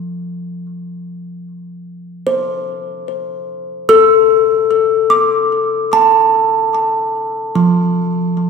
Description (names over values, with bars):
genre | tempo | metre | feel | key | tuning
ambient | 74 BPM | 3/4 | straight | D minor | A4 = 441 Hz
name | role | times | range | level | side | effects
kalimba | solo | 0.0-8.5 s | F3 to E6 | -13 LUFS | left 1 dB | ping-pong delay
room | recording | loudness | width
wet concert hall reverb, RT60 2.3 s | none | -11 LUFS | side -5 dB against mid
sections
0.0-8.5 A section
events
none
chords
0.0 Dm7; 7.9 F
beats
| 0.65 1.46 2.27 | 3.08 3.89 4.70 | 5.51 6.32 7.13 | 7.94